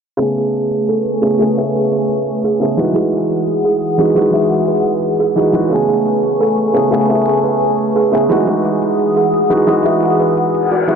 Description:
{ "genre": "liquid drum and bass", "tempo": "174 BPM", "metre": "4/4", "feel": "straight", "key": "A lydian", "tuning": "A4 = 439 Hz", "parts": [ { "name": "warm grand piano", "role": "accompaniment", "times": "0.2-11.0 s", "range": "C#3 to G#5", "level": "-16 LUFS", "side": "equal", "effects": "low-pass filter, ping-pong delay" }, { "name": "airy breathy pad", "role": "sustained chords", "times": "0.2-11.0 s", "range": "E3 to D#6", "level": "-18 LUFS", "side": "left 2 dB", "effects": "chorus" }, { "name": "buzzing kalimba", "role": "arpeggios", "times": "0.2-11.0 s", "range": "F#4 to E5", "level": "-17 LUFS", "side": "right 3 dB", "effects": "low-pass filter, dub echo" }, { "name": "electronic hi-hat", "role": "drums", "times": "0.2-11.0 s", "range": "none", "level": "-49 LUFS", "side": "right 4 dB", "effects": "none" }, { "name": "reverse cymbal", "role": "sound effects", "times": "10.6-11.0 s", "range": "none", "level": "-21 LUFS", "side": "left 6 dB", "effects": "none" } ], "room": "moderate lush hall reverb, RT60 1.9 s, studio reverb", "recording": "low-pass filter", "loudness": "-12 LUFS", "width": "side -6 dB against mid", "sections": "0.2-11.0 A section", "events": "filter sweep on grand piano 0.2-11.0; filter sweep on analog synth pad 0.2-11.0; filter sweep on kalimba 0.2-11.0; filter sweep 0.2-11.0; reverse cymbal 10.6-11.0", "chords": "0.2 Amaj9; 2.8 Emaj9; 5.7 Amaj9; 8.3 Emaj9" }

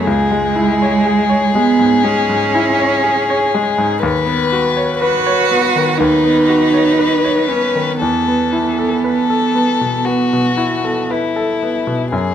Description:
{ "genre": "neoclassical piano and strings", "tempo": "60 BPM", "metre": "4/4", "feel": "rubato", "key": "unclear", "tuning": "A4 = 440 Hz", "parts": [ { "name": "warm violin", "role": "melody", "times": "0.0-12.3 s", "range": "E4 to B4", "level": "-17 LUFS", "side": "left 5 dB", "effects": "none" }, { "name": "rich cello", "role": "second line", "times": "0.0-11.1 s", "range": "G#3 to F#4", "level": "-16 LUFS", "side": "right 4 dB", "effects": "none" }, { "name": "bright grand piano", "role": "accompaniment", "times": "0.0-12.3 s", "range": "C#2 to C#5", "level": "-18 LUFS", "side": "left 1 dB", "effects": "none" } ], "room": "moderate large studio reverb, RT60 1.5 s", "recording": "none", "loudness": "-12 LUFS", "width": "side -9 dB against mid", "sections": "0.0-12.3 A section", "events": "none", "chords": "0.1 C#m; 4.0 Badd9/D#; 8.0 Esus4" }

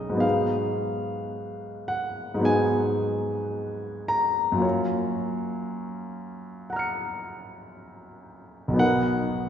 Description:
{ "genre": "classical, impressionist solo piano", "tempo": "54-60 BPM", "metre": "4/4", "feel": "rubato", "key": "F# major", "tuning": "A4 = 440 Hz", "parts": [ { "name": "warm grand piano", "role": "solo", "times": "0.0-9.5 s", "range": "B1 to C#7", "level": "-24 LUFS", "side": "left 1 dB", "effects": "none" } ], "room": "wet concert hall reverb, RT60 2.2 s", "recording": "heard from further back in the room, nothing above 7.9 kHz", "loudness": "-24 LUFS", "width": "side -9 dB against mid", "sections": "0.0-9.5 A section", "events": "none", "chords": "0.2 G#m7; 4.6 F#maj7; 8.8 Bmaj7" }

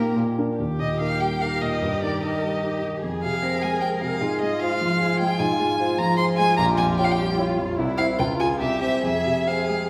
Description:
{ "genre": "quick classical-period movement for piano quartet", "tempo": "150 BPM", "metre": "3/4", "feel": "rubato", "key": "Eb major, F minor from 5.4 s", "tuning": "A4 = 440 Hz", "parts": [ { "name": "rich violin", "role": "melody", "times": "0.0-9.9 s", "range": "G4 to C6", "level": "-27 LUFS", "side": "equal", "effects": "none" }, { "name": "rich cello", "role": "second line", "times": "0.0-9.9 s", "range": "Bb3 to Bb4", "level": "-32 LUFS", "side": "equal", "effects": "none" }, { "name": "warm violin", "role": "second line", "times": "0.0-9.9 s", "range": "E4 to Bb4", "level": "-35 LUFS", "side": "equal", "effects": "none" }, { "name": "warm grand piano", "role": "accompaniment", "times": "0.0-9.9 s", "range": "Bb1 to Db5", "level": "-26 LUFS", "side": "equal", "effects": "none" } ], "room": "wet recital hall reverb, RT60 1.4 s", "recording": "heard from further back in the room", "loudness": "-23 LUFS", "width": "mono", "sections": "0.6-9.9 A section", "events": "none", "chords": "0.2 Bb; 0.6 Eb; 1.8 Eb/G; 3.0 Fm; 4.2 Fm/Ab; 6.6 Gm7b5/Bb; 7.8 C; 8.2 Db; 8.6 C; 9.0 Fm" }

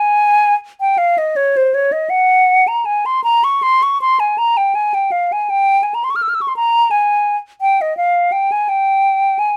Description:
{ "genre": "classical, free, expressive piece for unaccompanied flute", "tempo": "51-58 BPM (dotted quarters)", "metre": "6/8", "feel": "rubato", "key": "unclear", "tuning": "A4 = 441 Hz", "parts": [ { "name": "hollow concert flute", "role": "solo", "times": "0.0-9.6 s", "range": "C5 to F6", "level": "-15 LUFS", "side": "equal", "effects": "none" } ], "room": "light reverb", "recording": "none", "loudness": "-15 LUFS", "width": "mono", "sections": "0.0-9.6 A section", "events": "none", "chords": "none" }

